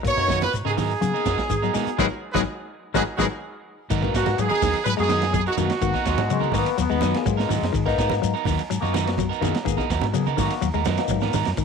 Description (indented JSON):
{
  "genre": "afrobeat",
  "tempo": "125 BPM",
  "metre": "4/4",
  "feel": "straight",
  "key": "G# minor",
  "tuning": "A4 = 440 Hz",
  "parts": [
    { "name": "barky tine electric piano", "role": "accompaniment", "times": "0.0-11.3 s", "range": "G#3 to G#4", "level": "-30 LUFS", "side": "left 14 dB", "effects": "overdrive, phaser" },
    { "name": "semi-hollow electric guitar", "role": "arpeggios", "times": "0.0-11.6 s", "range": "C#3 to G#3", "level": "-28 LUFS", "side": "left 14 dB", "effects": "none" },
    { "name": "hollow-body short-scale fingered electric bass", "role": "bass", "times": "0.0-11.6 s", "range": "G#1 to F#3", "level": "-26 LUFS", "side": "equal", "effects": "none" },
    { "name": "crunchy breakbeat drum kit", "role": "drums", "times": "0.0-11.6 s", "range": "crash cymbal, hi-hat, kick drum, ride cymbal, snare drum", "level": "-30 LUFS", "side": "right 3 dB", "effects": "none" },
    { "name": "warm horn section", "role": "melody", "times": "0.1-6.5 s", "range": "F#4 to C#5", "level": "-26 LUFS", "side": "equal", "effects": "none" },
    { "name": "brilliant trumpet", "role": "second line", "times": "0.1-6.5 s", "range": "F#4 to C#5", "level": "-30 LUFS", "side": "right 12 dB", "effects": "none" },
    { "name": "shekere", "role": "percussion", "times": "0.1-11.6 s", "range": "none", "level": "-34 LUFS", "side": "left 7 dB", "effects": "none" },
    { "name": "electric guitar at the edge of break-up", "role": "stabs", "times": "0.2-11.5 s", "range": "F#3 to A#4", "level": "-29 LUFS", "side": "right 13 dB", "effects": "none" },
    { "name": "congas", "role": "percussion", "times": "0.2-11.5 s", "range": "none", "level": "-31 LUFS", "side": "right 10 dB", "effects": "none" },
    { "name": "clear trombone section", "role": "second line", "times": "2.0-8.2 s", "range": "F#3 to B3", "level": "-29 LUFS", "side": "left 13 dB", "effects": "none" }
  ],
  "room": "light reverb, studio reverb",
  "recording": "1960s-style stereo with parts hard left and right",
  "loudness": "-20 LUFS",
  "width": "side -6 dB against mid",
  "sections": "0.0-3.9 A section; 3.9-11.6 B section",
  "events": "band accent 2.0-3.9",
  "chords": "0.0 G#m9"
}